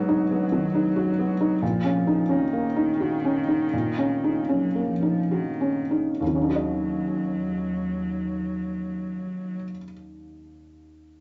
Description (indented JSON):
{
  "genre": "neoclassical piano and strings",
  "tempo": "65-92 BPM",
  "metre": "3/4",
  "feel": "rubato",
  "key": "Eb minor",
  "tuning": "A4 = 441 Hz",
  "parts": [
    { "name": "warm cello", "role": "second line", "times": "0.0-9.6 s", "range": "Eb3 to Gb3", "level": "-30 LUFS", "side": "equal", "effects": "none" },
    { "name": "felt-muted upright piano", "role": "accompaniment", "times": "0.0-11.2 s", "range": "Eb2 to Eb5", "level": "-26 LUFS", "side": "equal", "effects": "none" }
  ],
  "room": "moderate studio reverb, RT60 0.6 s",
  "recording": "nothing above 7.8 kHz",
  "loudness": "-25 LUFS",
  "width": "mono",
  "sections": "0.0-6.2 A section; 6.2-11.2 B section",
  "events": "slowing down 0.6-6.2",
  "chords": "0.0 Abm7; 1.6 Ebm7/Bb; 6.2 Ebm7"
}